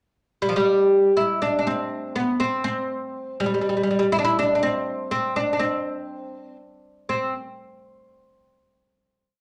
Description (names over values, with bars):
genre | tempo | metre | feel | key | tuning
Persian modal ensemble | 81 BPM (dotted quarters) | 6/8 | straight | C dastgah mahur | A4 = 441 Hz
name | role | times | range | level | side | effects
oud | solo | 0.4-7.3 s | F3 to E4 | -23 LUFS | equal | none
room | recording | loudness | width
moderate large studio reverb, RT60 0.8 s | none | -23 LUFS | mono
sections
0.0-1.2 pickup bar; 1.2-7.1 A section; 7.1-8.6 final note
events
none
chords
none